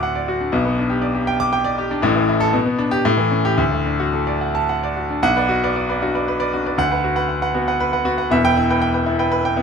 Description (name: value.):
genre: classical, virtuoso piano study.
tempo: 118 BPM.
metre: 3/4.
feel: rubato.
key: D major, B minor from 5.2 s.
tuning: A4 = 440 Hz.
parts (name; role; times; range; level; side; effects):
clear grand piano; solo; 0.0-9.6 s; E1 to D6; -16 LUFS; equal; none.
room: little or no reverb.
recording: close, detailed microphones.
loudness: -17 LUFS.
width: side -6 dB against mid.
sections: 0.0-5.2 A section; 5.2-9.6 B section.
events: none.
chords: 0.0 D; 0.5 G/B; 2.0 A5; 2.5 G/B; 3.0 A7; 3.6 D; 5.2 Bm; 6.8 Bm/D; 8.3 Em.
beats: 0.03 | 0.54 1.03 1.54 | 2.04 2.54 3.05 | 3.58 4.14 4.69 | 5.24 5.75 6.28 | 6.79 7.30 7.81 | 8.31 8.82 9.32.